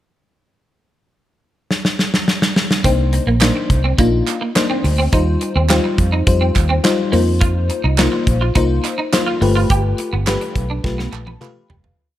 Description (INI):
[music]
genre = early-eighties boogie funk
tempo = 105 BPM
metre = 4/4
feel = straight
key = C dorian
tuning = A4 = 441 Hz
[part]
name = modern studio drum kit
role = drums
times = 1.7-12.0 s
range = handclaps, hi-hat, kick drum, snare drum, toms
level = -18 LUFS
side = equal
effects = gated reverb
[part]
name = FM electric piano with soft pad layer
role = accompaniment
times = 2.8-11.9 s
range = G3 to A5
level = -20 LUFS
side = left 4 dB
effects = chorus
[part]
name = electric guitar at the edge of break-up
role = riff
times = 2.8-11.8 s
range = G3 to G4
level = -23 LUFS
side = right 4 dB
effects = ensemble chorus
[part]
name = fingered electric bass with an envelope filter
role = bass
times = 2.8-11.9 s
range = F1 to F2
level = -17 LUFS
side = equal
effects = none
[part]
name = group handclap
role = percussion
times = 3.4-11.6 s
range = none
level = -27 LUFS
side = right 12 dB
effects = none
[sound]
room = small room ambience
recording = none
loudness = -14 LUFS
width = side -13 dB against mid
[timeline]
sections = 0.6-2.8 pickup bar; 2.8-12.0 verse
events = drum fill 1.7-2.8, 10.8-12.0; fade-out 9.7-12.0; FM electric piano fill 10.8-12.0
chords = 0.6 N.C.; 2.8 Cm9; 5.1 Eb69; 7.1 F7sus4; 9.4 G9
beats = | 0.56 1.13 1.70 2.27 | 2.84 3.42 3.99 4.56 | 5.13 5.70 6.27 6.84 | 7.42 7.99 8.56 9.13 | 9.70 10.27 10.84 11.41